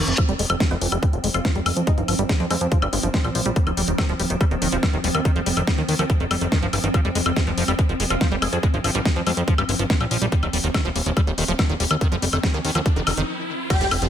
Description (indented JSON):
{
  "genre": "psychedelic trance",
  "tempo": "142 BPM",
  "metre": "4/4",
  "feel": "straight",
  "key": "unclear",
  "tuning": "A4 = 439 Hz",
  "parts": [
    { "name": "swarming drone", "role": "sustained chords", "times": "0.0-14.1 s", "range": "F3 to C4", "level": "-29 LUFS", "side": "right 1 dB", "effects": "built-in reverb, sidechain pumping" },
    { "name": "liquid acid bass", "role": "riff", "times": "0.0-14.1 s", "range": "D3 to Ab3", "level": "-27 LUFS", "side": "equal", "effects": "chorus, auto-pan, sidechain pumping, ping-pong delay" },
    { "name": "fat analog bass", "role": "bass", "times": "0.0-14.1 s", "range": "Eb1 to F2", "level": "-24 LUFS", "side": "equal", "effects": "none" },
    { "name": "reverse cymbal, riser and impact", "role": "sound effects", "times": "0.0-0.2, 11.7-14.1 s", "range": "none", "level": "-30 LUFS", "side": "equal", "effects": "none" },
    { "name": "big-room dance drum kit", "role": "drums", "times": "0.1-14.1 s", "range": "crash cymbal, hi-hat, snare drum, woodblock", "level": "-25 LUFS", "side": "left 2 dB", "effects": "none" },
    { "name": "electronic kick drum", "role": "drums", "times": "0.2-13.8 s", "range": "none", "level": "-20 LUFS", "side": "equal", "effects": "none" },
    { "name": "resonant blip pluck", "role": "second line", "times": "0.7-2.6, 7.5-9.4 s", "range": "C4 to Ab4", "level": "-35 LUFS", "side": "left 1 dB", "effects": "none" },
    { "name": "swarming rave lead", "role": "melody", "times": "13.7-13.9 s", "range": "G4", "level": "-24 LUFS", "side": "left 1 dB", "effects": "chorus, phaser, sidechain pumping" }
  ],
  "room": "light reverb",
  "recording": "faint mains hum",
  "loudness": "-19 LUFS",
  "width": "side -10 dB against mid",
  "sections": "0.0-13.7 A section",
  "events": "reverse cymbal 0.0; riser 11.7-13.7; break 13.3-13.7; impact 13.7-14.1",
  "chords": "0.2 F5; 3.6 Eb69; 6.9 F5; 10.3 Ebsus2"
}